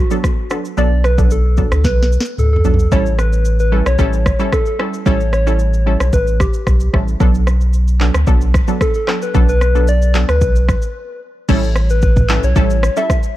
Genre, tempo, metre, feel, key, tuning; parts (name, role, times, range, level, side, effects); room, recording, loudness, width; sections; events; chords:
afrobeats; 112 BPM; 4/4; straight; A4 = 437 Hz
soft struck synth lead; melody; 0.0-13.4 s; F#4 to E5; -20 LUFS; left 1 dB; chorus, ping-pong delay
warm sub bass; bass; 0.0-12.9 s; A1 to D2; -14 LUFS; equal
analog pluck; accompaniment; 0.1-13.2 s; F#3 to A4; -21 LUFS; right 2 dB; chorus
afro-pop drum kit; drums; 0.1-13.4 s; crash cymbal, handclaps, kick drum, rim click, shaker, snare drum, toms; -16 LUFS; equal
little or no reverb; dark, warm production; -12 LUFS; side -15 dB against mid
0.0-2.9 A section; 2.9-11.5 B section; 11.5-13.4 C section
drum fill 1.8-2.9; break 11.0-11.5
0.0 Bm7; 2.9 A7; 7.2 Bm7; 11.5 A7